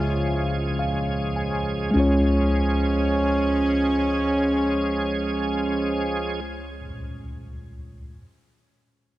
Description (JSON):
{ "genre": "slow gospel", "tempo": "32-39 BPM (dotted quarters)", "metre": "6/8", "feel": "straight", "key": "Db major", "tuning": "A4 = 440 Hz", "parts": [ { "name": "warm saxophone section", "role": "melody", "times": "0.0-6.4 s", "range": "Ab3 to F4", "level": "-25 LUFS", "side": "right 1 dB", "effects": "cassette tape, analog delay" }, { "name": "tine electric piano", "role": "accompaniment", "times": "0.0-8.2 s", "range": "Db2 to Ab5", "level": "-25 LUFS", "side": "equal", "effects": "medium stereo tremolo, cassette tape" }, { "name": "bright tonewheel organ", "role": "sustained chords", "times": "0.0-6.4 s", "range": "F3 to Ab4", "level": "-27 LUFS", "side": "right 2 dB", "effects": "fast rotary speaker, overdrive, chorus vibrato, cassette tape" } ], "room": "moderate lush hall reverb, RT60 3.1 s", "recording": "home recording on cassette", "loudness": "-20 LUFS", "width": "side -16 dB against mid", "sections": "0.0-1.9 A section; 1.9-5.6 B section", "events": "slowing down 0.0-1.9; tine electric piano fill 0.2-1.9", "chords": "0.0 Db" }